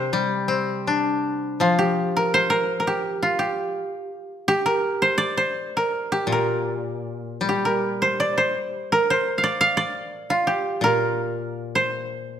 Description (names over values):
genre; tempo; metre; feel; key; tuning
japanese traditional, Japanese chamber music; 83 BPM; 2/4; rubato; C suspended pentatonic; A4 = 442 Hz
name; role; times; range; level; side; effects
koto; melody; 0.0-12.4 s; F4 to F5; -21 LUFS; right 1 dB; none
koto; accompaniment; 0.0-3.8, 6.3-12.4 s; Bb2 to D4; -25 LUFS; left 4 dB; none
room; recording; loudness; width
moderate scoring stage reverb, RT60 1.5 s; none; -20 LUFS; side -9 dB against mid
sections
0.0-1.6 A section; 1.6-12.4 B section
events
none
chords
none